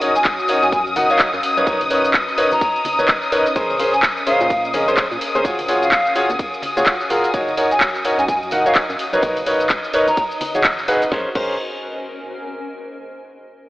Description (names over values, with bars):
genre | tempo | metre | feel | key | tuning
piano house | 127 BPM | 4/4 | swing 59% on 16ths | Bb phrygian | A4 = 442 Hz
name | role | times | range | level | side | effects
rich studio string section | sustained chords | 0.0-11.1 s | Eb6 | -23 LUFS | left 2 dB | sidechain pumping
clear grand piano | riff | 0.0-11.5 s | Db4 to Gb5 | -19 LUFS | equal | sidechain pumping, tape echo
organ-like FM bass | bass | 0.0-11.6 s | Eb1 to Bb2 | -34 LUFS | equal | sidechain pumping
house drum kit | drums | 0.0-11.5 s | cabasa, crash cymbal, handclaps, hi-hat, ride cymbal, snare drum | -22 LUFS | equal | none
tambourine and congas | percussion | 0.0-11.1 s | none | -37 LUFS | equal | none
granular cloud pad | texture | 0.0-13.0 s | Db4 to Bb5 | -30 LUFS | equal | built-in reverb, wide subtle chorus, sidechain pumping
mellow hollow jazz flute | melody | 0.2-10.2 s | F5 to A#5 | -23 LUFS | equal | tape echo
electronic kick drum | drums | 0.3-11.5 s | none | -25 LUFS | equal | none
room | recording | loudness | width
wet lush hall reverb, RT60 1.7 s | dreamy mix soaked in reverb, telephone sound | -15 LUFS | side -18 dB against mid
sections
0.0-11.1 A section; 11.1-13.0 B section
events
drop 0.0-11.1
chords
0.0 Gb6; 1.4 Bmaj9; 3.6 Bbm9; 5.4 Ebm11; 7.3 Gb6; 9.0 Bmaj9; 10.2 Ab7sus4; 11.1 Bbm9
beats
0.25 0.72 1.20 | 1.67 2.14 2.61 3.09 | 3.56 4.03 4.50 4.98 | 5.45 5.92 6.39 6.87 | 7.34 7.81 8.28 8.76 | 9.23 9.70 10.17 10.65 | 11.12 11.59 12.06 12.54